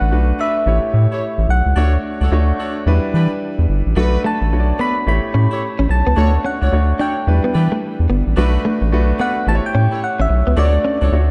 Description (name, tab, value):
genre	R&B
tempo	109 BPM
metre	4/4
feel	swing 63% on 16ths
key	B minor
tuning	A4 = 440 Hz
part	soft struck synth lead	melody	0.0-11.3 s	D5 to B5	-24 LUFS	equal	chorus, digital delay
part	clear concert grand piano	accompaniment	0.0-11.3 s	G3 to E5	-25 LUFS	equal	none
part	round analog bass	bass	0.0-11.3 s	G1 to E3	-18 LUFS	equal	none
part	mellow horn section	stabs	0.4-11.1 s	D4 to C#5	-30 LUFS	equal	none
part	direct-recorded clean electric guitar	riff	4.0-11.0 s	F#3 to D4	-26 LUFS	equal	subtle chorus
room	light reverb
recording	dark, warm production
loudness	-17 LUFS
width	mono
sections	0.0-11.3 A section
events	none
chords	0.0 Bm7; 0.7 A7; 1.8 Dmaj7; 2.9 Em7; 4.0 Bm7; 5.1 A7; 6.2 Dmaj7; 7.3 Em7; 8.4 Bm7; 9.5 A7; 10.6 Dmaj7